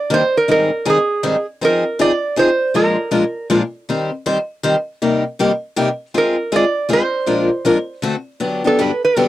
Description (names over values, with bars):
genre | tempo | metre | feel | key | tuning
jazz | 159 BPM | 3/4 | swing 62% on 8ths | unclear | A4 = 439 Hz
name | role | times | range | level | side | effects
metal-body resonator slide guitar | melody | 0.0-3.5, 6.2-9.3 s | Ab4 to D5 | -17 LUFS | right 2 dB | none
picked steel-string acoustic guitar | accompaniment | 0.1-9.3 s | G2 to C5 | -16 LUFS | left 2 dB | none
room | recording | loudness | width
light reverb | dry, close 1970s-style studio recording | -15 LUFS | side -14 dB against mid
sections
0.0-8.4 A section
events
none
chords
0.5 Abmaj7; 1.6 Fm7; 2.7 Bb7; 3.9 Eb6; 5.0 Cm7; 6.1 Ab69; 7.3 Bb7; 8.0 D7; 8.4 Gmaj7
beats
0.11 | 0.49 0.86 1.24 | 1.62 2.00 2.37 | 2.75 3.13 3.50 | 3.88 4.26 4.64 | 5.01 5.39 5.77 | 6.15 6.53 6.90 | 7.28 7.66 8.04 | 8.42 8.79 9.17